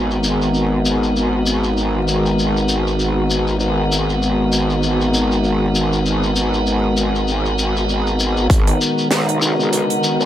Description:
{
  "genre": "glitch hop",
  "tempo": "98 BPM",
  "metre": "4/4",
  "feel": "swing 57% on 16ths",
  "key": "G# minor",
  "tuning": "A4 = 440 Hz",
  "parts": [
    { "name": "warm analog pad", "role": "sustained chords", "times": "0.0-10.3 s", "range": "D#3 to F#4", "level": "-21 LUFS", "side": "equal", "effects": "chorus, sidechain pumping" },
    { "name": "tonewheel organ", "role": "stabs", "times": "0.0-10.3 s", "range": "B3 to A#4", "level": "-20 LUFS", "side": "equal", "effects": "slow rotary speaker, vintage 12-bit sampler grit, sidechain pumping, low-pass filter, digital delay" },
    { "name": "growl bass", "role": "bass", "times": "0.0-10.3 s", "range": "G#1 to B1", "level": "-20 LUFS", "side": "equal", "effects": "chorus, tube saturation, high-pass filter" },
    { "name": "impact and riser", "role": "sound effects", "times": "0.0-1.2, 8.9-10.3 s", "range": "none", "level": "-33 LUFS", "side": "equal", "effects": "none" },
    { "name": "shekere", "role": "percussion", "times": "0.1-10.3 s", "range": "none", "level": "-24 LUFS", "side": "left 3 dB", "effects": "none" },
    { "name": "electronic kick drum", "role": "drums", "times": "8.5-8.6 s", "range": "none", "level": "-14 LUFS", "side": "equal", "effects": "overdrive" },
    { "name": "tight funk drum kit", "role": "drums", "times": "8.5-10.0 s", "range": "hi-hat, snare drum", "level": "-21 LUFS", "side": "right 2 dB", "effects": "high-pass filter on hats, low-pass filter on hats, high-pass filter on snare, low-pass filter on snare, high-pass filter on cymbals, low-pass filter on cymbals, high-pass filter on room, low-pass filter on room" }
  ],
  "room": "light reverb",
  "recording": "vinyl crackle",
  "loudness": "-15 LUFS",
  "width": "side -11 dB against mid",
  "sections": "0.0-8.5 A section; 8.5-10.3 B section",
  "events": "impact 0.0-1.2; filter sweep on analog synth pad 0.0-8.5; build-up 8.5-10.3; filter sweep 8.5-10.3; riser 8.9-10.3",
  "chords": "0.0 G#m7"
}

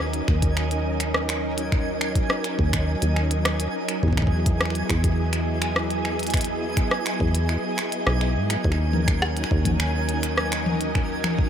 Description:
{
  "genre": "IDM",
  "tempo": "104 BPM",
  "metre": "4/4",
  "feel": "straight",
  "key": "Eb phrygian",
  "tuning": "A4 = 440 Hz",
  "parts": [
    { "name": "soft string machine", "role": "sustained chords", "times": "0.0-11.5 s", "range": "Gb3 to Eb5", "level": "-27 LUFS", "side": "right 1 dB", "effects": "ensemble chorus" },
    { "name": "deep acid bass", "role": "bass", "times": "0.0-11.5 s", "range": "B1 to G#2", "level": "-25 LUFS", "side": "equal", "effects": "none" },
    { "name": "twinkling granular texture", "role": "texture", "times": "0.0-11.5 s", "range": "Ab5", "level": "-33 LUFS", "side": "right 3 dB", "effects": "built-in reverb" },
    { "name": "glitchy drum kit", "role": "drums", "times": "0.1-11.4 s", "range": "finger snaps, hi-hat, rim click, toms", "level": "-28 LUFS", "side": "left 1 dB", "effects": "none" },
    { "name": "electronic kick drum", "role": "drums", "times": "0.3-11.5 s", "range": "none", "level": "-24 LUFS", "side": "equal", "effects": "none" }
  ],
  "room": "light reverb, digital ambience",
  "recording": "none",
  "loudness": "-21 LUFS",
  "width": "side -9 dB against mid",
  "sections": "0.0-11.5 A section",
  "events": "none",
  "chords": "0.0 Ebm7; 4.0 Emaj9; 8.6 Ebm7"
}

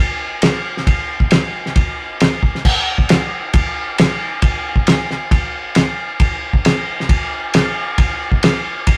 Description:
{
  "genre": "rock",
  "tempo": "135 BPM",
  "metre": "4/4",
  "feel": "straight",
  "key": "none",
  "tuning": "none",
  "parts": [
    { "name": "cloth-damped thuddy drum kit", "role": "drums", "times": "0.4-9.0 s", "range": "crash cymbal, kick drum, ride cymbal, snare drum", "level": "-17 LUFS", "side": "equal", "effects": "none" }
  ],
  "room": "light reverb",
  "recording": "rough rehearsal-room recording, warm saturation",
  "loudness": "-17 LUFS",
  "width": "mono",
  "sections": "0.0-9.0 A section",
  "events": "none",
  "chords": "none"
}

